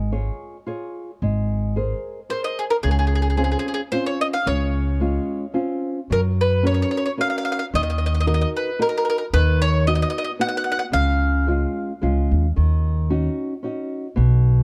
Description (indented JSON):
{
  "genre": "italian folk, Italian serenade",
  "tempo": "111 BPM",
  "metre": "3/4",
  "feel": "straight",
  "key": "Db major, F# major from 6.1 s",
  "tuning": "A4 = 440 Hz",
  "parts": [
    { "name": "nylon-string guitar", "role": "accompaniment", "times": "0.0-14.6 s", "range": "B2 to Db5", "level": "-28 LUFS", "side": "equal", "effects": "none" },
    { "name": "upright bass", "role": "bass", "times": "0.0-14.6 s", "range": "Ab1 to F#2", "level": "-22 LUFS", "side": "equal", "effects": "none" },
    { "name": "mandolin", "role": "melody", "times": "2.3-12.3 s", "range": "Ab4 to F#5", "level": "-25 LUFS", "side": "equal", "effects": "none" }
  ],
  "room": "light reverb",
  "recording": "none",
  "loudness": "-22 LUFS",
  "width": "mono",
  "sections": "0.0-6.1 A section; 6.1-14.6 B section",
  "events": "none",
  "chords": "0.0 Db/Ab; 1.2 Abadd9; 2.8 Dbmaj7; 6.1 F#; 7.7 D#m; 9.3 B/D#; 10.9 C#; 12.6 D#m7"
}